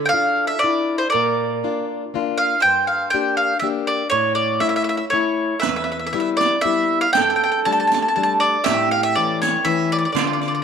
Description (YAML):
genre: italian folk, Italian serenade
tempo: 120 BPM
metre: 3/4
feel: swing 53% on 8ths, rubato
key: unclear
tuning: A4 = 439 Hz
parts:
  - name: mandolin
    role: second line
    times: 0.0-10.6 s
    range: F4 to C#5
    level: -26 LUFS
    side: right 10 dB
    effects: none
  - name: nylon-string guitar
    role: accompaniment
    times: 0.0-10.6 s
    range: E2 to G4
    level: -24 LUFS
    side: left 8 dB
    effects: none
  - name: mandolin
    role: melody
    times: 0.1-10.6 s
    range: C5 to A5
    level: -19 LUFS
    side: equal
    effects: none
  - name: riq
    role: percussion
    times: 5.6-10.5 s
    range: none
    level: -27 LUFS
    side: right 12 dB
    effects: none
room: moderate echo chamber reverb, RT60 2.1 s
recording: 1960s-style stereo with parts hard left and right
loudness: -17 LUFS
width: side -7 dB against mid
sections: 0.0-10.6 A section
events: none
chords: 0.0 Dmadd9; 1.1 Bb; 2.6 Gm; 4.1 A; 5.6 Em; 7.2 Gsus2; 8.7 A